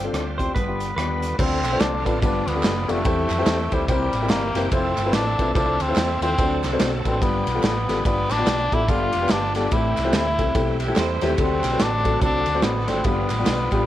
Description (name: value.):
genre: uptempo gospel.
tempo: 144 BPM.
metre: 4/4.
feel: swing 61% on 8ths.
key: unclear.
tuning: A4 = 440 Hz.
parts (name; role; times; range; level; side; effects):
French horn with straight mute; melody; 0.0-13.9 s; G3 to F4; -25 LUFS; left 1 dB; none.
clean electric guitar; melody; 0.0-1.4 s; B4 to C5; -30 LUFS; equal; lush chorus.
warm baby grand piano; accompaniment; 0.0-13.8 s; G2 to D5; -25 LUFS; left 2 dB; none.
bright tonewheel organ; sustained chords; 0.0-13.9 s; D3 to A4; -32 LUFS; right 2 dB; slow rotary speaker, overdrive, chorus vibrato.
hollow-body short-scale fingered electric bass; bass; 0.0-13.9 s; F1 to F2; -27 LUFS; right 1 dB; none.
modern studio drum kit; drums; 0.1-13.8 s; crash cymbal, hi-hat, kick drum, ride cymbal, rim click, snare drum; -24 LUFS; right 1 dB; none.
tambourine and handclaps; percussion; 1.4-13.8 s; none; -38 LUFS; right 4 dB; none.
clean electric guitar; second line; 10.8-11.6 s; B3 to E5; -29 LUFS; right 3 dB; none.
room: moderate scoring stage reverb, RT60 1.7 s.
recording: worn, warbling old tape, cassette tape, warbly pitch drift.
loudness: -19 LUFS.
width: side -13 dB against mid.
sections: 0.0-1.4 A section; 1.4-13.9 B section.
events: none.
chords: 0.0 G7sus4; 0.6 G7; 1.4 Dm7; 2.2 G7; 3.1 Am7/E; 3.9 C7; 4.7 Fmaj7; 6.4 D7; 7.2 G7; 9.7 Am7; 11.4 D7; 13.1 G7.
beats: 0.13 0.55 0.97 | 1.39 1.80 2.22 2.64 | 3.06 3.47 3.89 4.30 | 4.72 5.14 5.55 5.97 | 6.38 6.80 7.22 7.63 | 8.05 8.47 8.88 9.30 | 9.72 10.13 10.55 10.97 | 11.38 11.80 12.22 12.63 | 13.05 13.47.